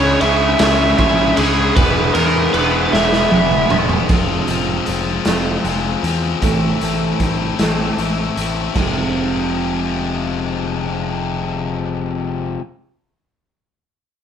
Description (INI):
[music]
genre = quiet-loud alternative rock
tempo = 51 BPM (dotted quarters)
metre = 6/8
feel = straight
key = F harmonic minor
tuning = A4 = 440 Hz
[part]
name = biting lead guitar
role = melody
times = 0.0-3.8 s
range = Ab4 to Fb5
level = -18 LUFS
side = right 2 dB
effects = overdrive
[part]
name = distorted electric guitar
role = riff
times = 0.0-12.6 s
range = F2 to F4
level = -20 LUFS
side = left 6 dB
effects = overdrive
[part]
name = raw garage guitar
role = riff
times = 0.0-4.1 s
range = Db3 to Fb4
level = -22 LUFS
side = right 5 dB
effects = overdrive, spring reverb
[part]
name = growling picked electric bass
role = bass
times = 0.0-12.6 s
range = E1 to E2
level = -22 LUFS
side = equal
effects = overdrive
[part]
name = raw garage drum kit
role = drums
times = 0.2-8.9 s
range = crash cymbal, hi-hat, kick drum, ride cymbal, snare drum, toms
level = -19 LUFS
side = right 1 dB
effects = none
[part]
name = picked steel-string acoustic guitar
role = arpeggios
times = 4.1-12.6 s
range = F2 to F4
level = -25 LUFS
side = right 6 dB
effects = none
[sound]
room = light reverb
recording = band playing live in one room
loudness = -15 LUFS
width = side -8 dB against mid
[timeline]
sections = 0.0-4.1 A section; 4.1-8.8 B section; 8.8-11.1 C section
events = drum fill 2.9-4.1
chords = 0.0 Dbm; 1.8 E; 4.1 Fm; 6.4 Am; 8.8 Fm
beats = 0.61 | 1.77 2.93 | 4.10 5.26 | 6.43 7.60 | 8.77 9.94